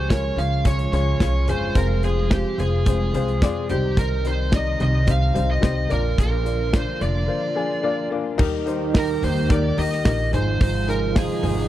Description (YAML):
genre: piano-driven pop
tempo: 108 BPM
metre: 4/4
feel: straight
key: Eb major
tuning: A4 = 435 Hz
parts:
  - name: lead guitar through a small cranked amp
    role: melody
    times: 0.0-11.7 s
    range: G4 to F5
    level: -26 LUFS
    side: right 1 dB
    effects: overdrive
  - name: warm upright piano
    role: accompaniment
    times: 0.0-11.7 s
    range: Ab2 to Eb5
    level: -27 LUFS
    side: left 6 dB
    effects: none
  - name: warm studio string section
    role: sustained chords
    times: 0.0-11.7 s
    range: C3 to G4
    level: -32 LUFS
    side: right 3 dB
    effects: none
  - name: upright bass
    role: bass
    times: 0.0-11.7 s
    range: F1 to F2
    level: -23 LUFS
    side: equal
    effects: none
  - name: modern studio drum kit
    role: drums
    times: 0.1-11.6 s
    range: crash cymbal, hi-hat, kick drum, snare drum, toms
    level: -22 LUFS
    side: equal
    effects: none
  - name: dark French horn section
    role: second line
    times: 8.4-11.7 s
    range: Eb3 to F4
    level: -28 LUFS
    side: right 11 dB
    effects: none
room: little or no reverb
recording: dry, close 1970s-style studio recording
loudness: -19 LUFS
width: side -13 dB against mid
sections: 0.0-8.4 A section; 8.4-11.7 B section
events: break 7.3-8.4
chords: 0.0 Db; 1.8 Fm; 3.7 Cm; 5.9 Bb; 8.4 Eb; 10.3 Ab